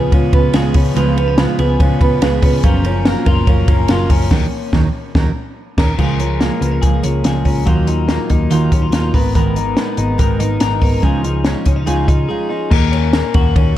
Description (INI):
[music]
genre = jangly indie pop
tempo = 143 BPM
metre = 4/4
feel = straight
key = unclear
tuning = A4 = 440 Hz
[part]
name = picked steel-string acoustic guitar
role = accompaniment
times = 0.0-12.7 s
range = Ab2 to Cb5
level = -20 LUFS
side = right 6 dB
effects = none
[part]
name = twelve-string electric guitar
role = arpeggios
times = 0.0-13.8 s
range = F3 to Bb4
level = -20 LUFS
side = left 6 dB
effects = dub echo
[part]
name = hollow-body short-scale picked electric bass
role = bass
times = 0.0-13.7 s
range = Gb1 to Eb2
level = -17 LUFS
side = equal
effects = none
[part]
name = compact cocktail drum kit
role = drums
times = 0.1-13.7 s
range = crash cymbal, hi-hat, kick drum, ride cymbal, snare drum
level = -16 LUFS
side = equal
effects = none
[sound]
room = light reverb, small room ambience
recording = echo-heavy mix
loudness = -12 LUFS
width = side -13 dB against mid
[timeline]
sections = 0.0-6.0 A section; 6.0-12.7 B section; 12.7-13.8 A section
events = band accent 4.3-6.0; break 12.3-12.7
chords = 0.0 Db7; 2.6 Gbmaj7; 4.3 Ebm7; 6.0 Db6; 7.7 Ebmadd9; 9.1 Abmadd9; 11.0 Dbadd9; 12.7 Ebm7